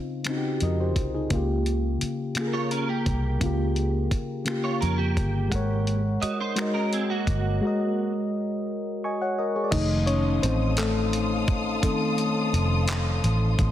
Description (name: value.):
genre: slow six-eight R&B.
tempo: 57 BPM (dotted quarters).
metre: 6/8.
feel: straight.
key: unclear.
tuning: A4 = 440 Hz.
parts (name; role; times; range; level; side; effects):
mellow FM electric piano; accompaniment; 0.0-13.7 s; Db3 to Db6; -26 LUFS; left 1 dB; chorus.
dusty soul sampler-style drum kit; drums; 0.2-13.7 s; crash cymbal, finger snaps, handclaps, hi-hat, kick drum; -29 LUFS; equal; soft clipping on snare.
vintage muted fingered electric bass; bass; 0.6-13.7 s; F1 to F2; -25 LUFS; equal; none.
clean electric guitar; second line; 2.5-8.1 s; Bb3 to Eb5; -31 LUFS; right 5 dB; ensemble chorus.
warm studio string section; sustained chords; 9.7-13.7 s; A4 to Eb6; -31 LUFS; equal; none.
room: light reverb.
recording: dense, heavily limited modern master.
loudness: -23 LUFS.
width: side -12 dB against mid.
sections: 0.0-9.7 A section; 9.7-13.7 B section.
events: FM electric piano fill 8.7-9.7; FM electric piano solo 9.7-13.7.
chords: 0.0 Dbmaj9; 1.3 Gm7b5; 5.5 Ab9sus4; 9.7 F7.